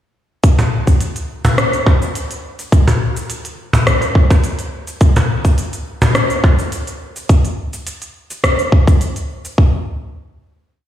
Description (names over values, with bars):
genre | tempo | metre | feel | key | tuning
downtempo | 105 BPM | 4/4 | swing 53% on 16ths | none | none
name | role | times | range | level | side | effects
electronic kick drum | drums | 0.4-9.7 s | none | -12 LUFS | equal | none
organic electronic drum kit | drums | 0.4-9.6 s | hi-hat, rim click, shaker | -21 LUFS | equal | none
cajon | percussion | 0.6-6.6 s | none | -17 LUFS | equal | none
room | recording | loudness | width
moderate lush hall reverb, RT60 2.0 s | played on a big sound system in a bare room, large studio reverb | -13 LUFS | side -11 dB against mid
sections
0.4-9.6 groove; 9.6-10.9 final hit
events
none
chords
none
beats
| 0.44 1.01 1.58 2.15 | 2.72 3.30 3.87 4.44 | 5.01 5.58 6.15 6.72 | 7.30 7.87 8.44 9.01 | 9.58